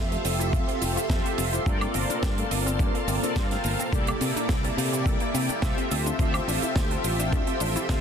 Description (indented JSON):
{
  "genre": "nu-disco, nu disco",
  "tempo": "106 BPM",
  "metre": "4/4",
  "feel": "straight",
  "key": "C mixolydian",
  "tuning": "A4 = 440 Hz",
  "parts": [
    { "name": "mellow synth brass", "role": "accompaniment", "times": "0.0-8.0 s", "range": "Bb3 to F5", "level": "-28 LUFS", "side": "equal", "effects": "chorus, tape echo" },
    { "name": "string machine, full ensemble", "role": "sustained chords", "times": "0.0-8.0 s", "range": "Bb3 to E6", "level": "-33 LUFS", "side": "equal", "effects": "ensemble chorus, sidechain pumping" },
    { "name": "wide unison pluck", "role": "arpeggios", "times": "0.0-8.0 s", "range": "A3 to A4", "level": "-36 LUFS", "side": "left 4 dB", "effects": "sidechain pumping, ping-pong delay" },
    { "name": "fingered electric bass", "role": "bass", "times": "0.0-8.0 s", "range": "F1 to C3", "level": "-30 LUFS", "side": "equal", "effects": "none" },
    { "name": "tight funk drum kit", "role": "drums", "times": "0.1-8.0 s", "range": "cabasa, hi-hat, snare drum, woodblock", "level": "-32 LUFS", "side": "right 4 dB", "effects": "small room reverb" },
    { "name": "electronic kick drum", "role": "drums", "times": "0.5-8.0 s", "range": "none", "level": "-26 LUFS", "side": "equal", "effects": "small room reverb" }
  ],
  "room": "studio reverb",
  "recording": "dense, heavily limited modern master",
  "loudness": "-23 LUFS",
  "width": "side -7 dB against mid",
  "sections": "0.0-8.0 A section",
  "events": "none",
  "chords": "0.0 Fmaj7; 1.7 Gm11; 3.9 C13; 5.9 Dm11"
}